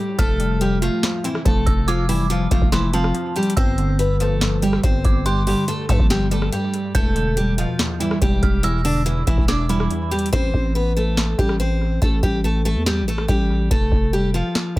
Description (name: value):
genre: hip hop, trap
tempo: 142 BPM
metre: 4/4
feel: half-time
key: A minor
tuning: A4 = 440 Hz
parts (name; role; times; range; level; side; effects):
- picked steel-string acoustic guitar; melody; 0.0-14.8 s; E3 to D5; -23 LUFS; left 1 dB; dub echo
- glassy wavetable pluck; accompaniment; 0.0-10.3 s; E2 to C4; -25 LUFS; equal; chorus, dub echo
- dark detuned synth bell; second line; 0.2-10.3 s; A5 to G6; -29 LUFS; right 4 dB; chorus, dub echo
- growling 808-style bass; bass; 0.2-14.8 s; E1 to G2; -21 LUFS; equal; none
- booming analog drum machine; drums; 0.2-14.8 s; hi-hat, kick drum, rim click, snare drum; -21 LUFS; equal; none
room: little or no reverb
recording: echo-heavy mix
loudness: -17 LUFS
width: side -18 dB against mid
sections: 0.0-10.3 A section; 10.3-14.8 B section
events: hi-hats muted 10.3-14.8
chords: 0.2 Fadd9; 3.6 G7sus4; 6.9 Em7; 10.3 Am7; 13.7 Fadd9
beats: | 0.19 0.61 1.03 1.46 | 1.88 2.30 2.72 3.15 | 3.57 3.99 4.41 4.83 | 5.26 5.68 6.10 6.53 | 6.95 7.37 7.79 8.21 | 8.64 9.06 9.48 9.90 | 10.33 10.75 11.17 11.60 | 12.02 12.44 12.86 13.29 | 13.71 14.13 14.55